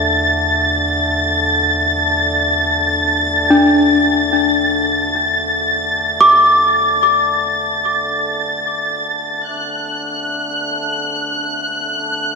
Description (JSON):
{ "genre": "ambient", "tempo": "free time", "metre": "none", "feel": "none", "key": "unclear", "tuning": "A4 = 439 Hz", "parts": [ { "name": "worn celesta", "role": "arpeggios", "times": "0.0-9.5 s", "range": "D4 to D6", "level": "-13 LUFS", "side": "left 1 dB", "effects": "ping-pong delay" }, { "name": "deep rumbling drone", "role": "bass", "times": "0.0-9.4 s", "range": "E2", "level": "-28 LUFS", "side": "right 1 dB", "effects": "built-in reverb" }, { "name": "pedal harmonium", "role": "drone", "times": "0.0-12.4 s", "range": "D3 to A3", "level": "-24 LUFS", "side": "equal", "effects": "none" }, { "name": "muted symphonic violin section", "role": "texture", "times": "0.0-12.4 s", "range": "F#6 to A6", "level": "-17 LUFS", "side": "equal", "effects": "none" } ], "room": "wet lush hall reverb, RT60 2.8 s", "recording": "none", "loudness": "-13 LUFS", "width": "side -4 dB against mid", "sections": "0.0-9.5 A section; 9.5-12.4 B section", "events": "fade-out on synth drone 0.0-9.5; fade-out on harmonium 0.0-9.5", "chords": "0.0 E7sus4; 9.5 D", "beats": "free time" }